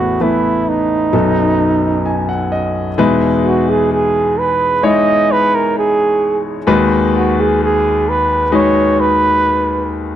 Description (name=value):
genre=pop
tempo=65 BPM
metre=4/4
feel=straight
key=unclear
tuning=A4 = 440 Hz
part: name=breathy flugelhorn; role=melody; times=0.0-9.9 s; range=D#4 to D#5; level=-14 LUFS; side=right 3 dB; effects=slapback echo
part: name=clear grand piano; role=accompaniment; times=0.0-10.2 s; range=A1 to G#5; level=-14 LUFS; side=left 2 dB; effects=none
room=light reverb, small room ambience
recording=dry, close 1970s-style studio recording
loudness=-12 LUFS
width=side -10 dB against mid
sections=0.0-3.0 A section; 3.0-10.2 B section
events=grand piano fill 1.6-3.0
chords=0.0 Asus2; 1.1 B7; 3.0 Emaj7; 6.7 G#m7/D#